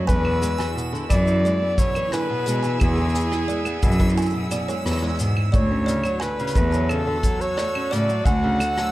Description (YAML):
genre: folktronica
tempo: 88 BPM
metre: 4/4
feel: straight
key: unclear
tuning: A4 = 437 Hz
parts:
  - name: clear string quartet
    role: sustained chords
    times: 0.0-8.9 s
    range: B3 to A4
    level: -34 LUFS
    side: right 1 dB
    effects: vintage 12-bit sampler grit
  - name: nylon-string guitar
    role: arpeggios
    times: 0.0-8.9 s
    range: B2 to C#4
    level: -29 LUFS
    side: right 1 dB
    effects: digital delay
  - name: backwards swelling texture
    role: texture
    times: 0.1-8.9 s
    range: E6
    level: -37 LUFS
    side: right 3 dB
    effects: built-in reverb
  - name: warm flugelhorn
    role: melody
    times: 0.1-8.9 s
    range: G#4 to F#5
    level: -26 LUFS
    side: equal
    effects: digital delay
  - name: buzzing kalimba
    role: second line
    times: 0.1-8.9 s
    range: G#4 to A5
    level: -33 LUFS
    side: right 3 dB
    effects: digital delay
  - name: rich cello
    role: bass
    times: 0.1-8.8 s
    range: D2 to B2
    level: -23 LUFS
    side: equal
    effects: none
  - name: kick drum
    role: drums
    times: 0.1-8.4 s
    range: none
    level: -22 LUFS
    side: equal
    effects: none
  - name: vintage brush drum kit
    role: drums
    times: 0.1-8.9 s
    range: claves, hi-hat, rim click, shaker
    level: -33 LUFS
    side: equal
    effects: none
room: studio ambience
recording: dark, warm production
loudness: -19 LUFS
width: side -16 dB against mid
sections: 0.0-8.9 A section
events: none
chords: 0.1 E7; 5.5 Dmaj7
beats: | 0.08 0.77 1.45 2.13 | 2.81 3.49 4.17 4.86 | 5.54 6.22 6.90 7.58 | 8.27